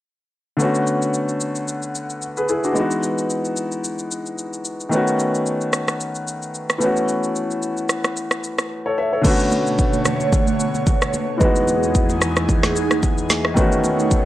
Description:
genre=amapiano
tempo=111 BPM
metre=4/4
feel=swing 55% on 16ths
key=unclear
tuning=A4 = 442 Hz
part: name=warm grand piano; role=accompaniment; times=0.6-14.2 s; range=D3 to E5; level=-20 LUFS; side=left 1 dB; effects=none
part: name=afro-pop drum kit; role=drums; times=0.6-14.2 s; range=crash cymbal, kick drum, rim click, shaker, snare drum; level=-20 LUFS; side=equal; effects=vintage 12-bit sampler grit
part: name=airy breathy pad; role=sustained chords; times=9.2-14.2 s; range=E2 to C#5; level=-23 LUFS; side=right 2 dB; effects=chorus, phaser, sidechain pumping
part: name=congas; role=percussion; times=9.2-14.0 s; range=none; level=-29 LUFS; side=right 2 dB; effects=none
room=little or no reverb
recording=dry, gritty hardware recording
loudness=-18 LUFS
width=side -14 dB against mid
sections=0.6-9.2 A section; 9.2-14.2 B section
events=none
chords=0.6 Bm9; 2.8 Emaj7; 4.9 B9; 6.8 A6; 9.2 Bm9; 11.4 Emaj7; 13.6 B9

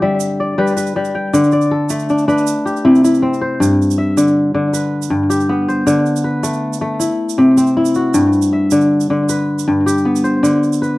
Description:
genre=west african traditional, West African string and xylophone music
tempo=106 BPM (dotted quarters)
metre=12/8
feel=straight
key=G major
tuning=A4 = 440 Hz
part: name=kora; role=arpeggios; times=0.0-11.0 s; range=G2 to G5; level=-12 LUFS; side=left 1 dB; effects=slapback echo
part: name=tube shaker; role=percussion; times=0.2-10.9 s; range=none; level=-28 LUFS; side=right 17 dB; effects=none
room=light reverb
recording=dry, close 1970s-style studio recording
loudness=-12 LUFS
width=side -19 dB against mid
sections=0.0-3.6 A section; 3.6-11.0 B section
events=none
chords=0.0 G; 1.3 D5; 2.5 C; 3.6 G; 5.9 D5; 7.0 C; 8.1 G; 10.4 D5

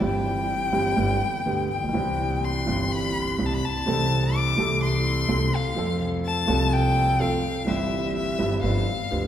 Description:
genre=tango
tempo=125 BPM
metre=4/4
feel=rubato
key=C major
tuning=A4 = 440 Hz
part: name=warm violin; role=second line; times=0.0-9.3 s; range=E5 to D6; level=-26 LUFS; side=left 4 dB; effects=none
part: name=warm concert grand piano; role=accompaniment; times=0.0-9.3 s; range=G1 to A4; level=-25 LUFS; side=right 2 dB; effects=none
part: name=upright bass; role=bass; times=0.0-9.3 s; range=G1 to F2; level=-27 LUFS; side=equal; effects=none
room=wet church reverb, RT60 3.0 s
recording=recorded in a church or concert hall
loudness=-22 LUFS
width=side -10 dB against mid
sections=0.0-9.3 A section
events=violin solo 0.0-9.3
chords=0.0 C/G; 1.0 G; 2.0 C; 3.9 Am/C; 5.8 F; 7.7 C/G; 8.6 G7

